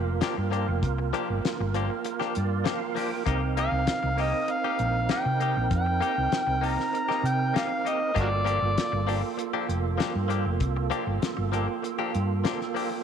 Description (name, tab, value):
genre	straight-eighth soul blues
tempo	98 BPM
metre	4/4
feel	straight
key	G minor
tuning	A4 = 440 Hz
part	percussive tonewheel organ	accompaniment	0.0-13.0 s	Bb3 to G5	-31 LUFS	right 13 dB	slow rotary speaker, overdrive, chorus vibrato
part	hollow-body short-scale fingered electric bass	bass	0.0-12.4 s	F1 to C3	-28 LUFS	equal	none
part	direct-recorded clean electric guitar	stabs	0.2-12.9 s	F3 to G4	-32 LUFS	left 10 dB	spring reverb
part	cloth-damped thuddy drum kit	drums	0.2-12.9 s	hi-hat, kick drum, snare drum	-32 LUFS	left 4 dB	none
part	overdriven harmonica	melody	3.6-9.4 s	F#4 to Bb5	-28 LUFS	left 1 dB	none
room	light reverb, studio ambience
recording	1960s-style stereo with parts hard left and right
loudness	-24 LUFS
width	side -8 dB against mid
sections	0.0-13.0 A section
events	tonewheel organ fill 2.1-3.3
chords	0.0 Gm7; 3.3 Cm7; 8.2 Gm7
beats	0.22 | 0.83 1.44 2.05 2.66 | 3.27 3.89 4.50 5.11 | 5.72 6.33 6.95 7.56 | 8.17 8.78 9.39 10.01 | 10.62 11.23 11.84 12.45